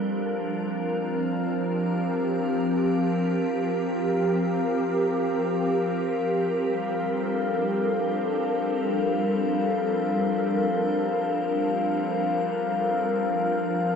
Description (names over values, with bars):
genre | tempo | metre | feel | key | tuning
ambient | free time | none | none | F major | A4 = 441 Hz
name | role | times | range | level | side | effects
soft additive organ-like pad | sustained chords | 0.0-14.0 s | F3 to Bb4 | -24 LUFS | equal | ensemble chorus, built-in reverb
bowed-like drone | drone | 0.0-14.0 s | F3 to C4 | -35 LUFS | equal | built-in reverb
glass harmonica | texture | 0.0-14.0 s | F4 to F5 | -31 LUFS | left 4 dB | stereo widening
room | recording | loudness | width
wet plate reverb, RT60 2.7 s | dreamy mix soaked in reverb | -23 LUFS | side -6 dB against mid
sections
0.0-14.0 A section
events
fade-in on synth drone 0.0-14.0; fade-in on glass harmonica 0.0-14.0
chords
0.1 Fsus24; 6.6 Gm9; 13.1 Fsus4